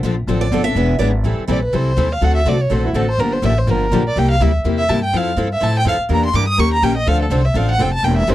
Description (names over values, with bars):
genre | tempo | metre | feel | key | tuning
acoustic string swing (jazz manouche) | 248 BPM | 4/4 | swing 55% on 8ths | D minor | A4 = 439 Hz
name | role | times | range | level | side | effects
picked steel-string acoustic guitar | accompaniment | 0.0-8.3 s | C3 to Bb4 | -22 LUFS | left 6 dB | none
picked steel-string acoustic guitar | accompaniment | 0.0-8.3 s | C3 to B4 | -24 LUFS | right 6 dB | none
upright bass | bass | 0.0-8.3 s | E1 to A2 | -18 LUFS | equal | none
picked steel-string acoustic guitar | second line | 0.4-1.1 s | D5 to E5 | -24 LUFS | right 5 dB | none
warm violin | melody | 1.5-8.3 s | E4 to Eb6 | -19 LUFS | right 1 dB | none
room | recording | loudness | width
little or no reverb | dry, close 1970s-style studio recording | -14 LUFS | side -14 dB against mid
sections
0.0-1.3 A section; 1.3-8.3 A section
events
steel-string acoustic guitar solo 0.0-1.3; violin solo 1.3-8.3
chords
0.0 Dm7; 0.8 E7; 1.3 Am7; 2.2 D7; 3.2 Gm7; 4.2 C7; 5.1 Fmaj7; 6.1 Em7b5; 6.6 Eb7; 7.1 Dm7